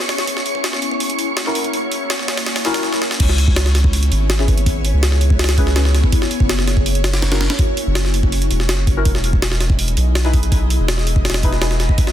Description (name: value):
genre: drum and bass, jungle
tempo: 164 BPM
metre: 4/4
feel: straight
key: C# dorian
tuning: A4 = 440 Hz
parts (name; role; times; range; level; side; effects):
- jungle sampler-style drum kit; drums; 0.0-12.1 s; crash cymbal, hi-hat, kick drum, snare drum; -18 LUFS; equal; high-pass filter on hats, high-pass filter on snare, high-pass filter on kick, high-pass filter on cymbals
- wind-like tuned noise texture; texture; 0.0-2.8 s; C#6; -27 LUFS; right 3 dB; built-in reverb
- deep mellow chord stab; stabs; 1.5-11.7 s; C#4 to B4; -25 LUFS; left 2 dB; chorus, phaser, dub echo
- soft dub sub bass; bass; 3.2-11.9 s; E1 to C#2; -17 LUFS; equal; none
room: light reverb, digital ambience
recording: dense, heavily limited modern master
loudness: -14 LUFS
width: side -11 dB against mid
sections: 0.0-3.2 A section; 3.2-12.1 B section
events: build-up 0.0-3.2; filter sweep on synth stab 0.0-3.2; drum fill 2.8-3.2; drop 3.2-12.1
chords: 0.3 F#7; 3.2 C#m7; 6.1 F#7; 9.1 Emaj7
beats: | 0.28 0.64 1.01 1.37 | 1.74 2.10 2.47 2.84 | 3.20 3.57 3.93 4.30 | 4.67 5.03 5.40 5.76 | 6.13 6.49 6.86 7.23 | 7.59 7.96 8.32 8.69 | 9.05 9.42 9.79 10.15 | 10.52 10.88 11.25 11.62 | 11.98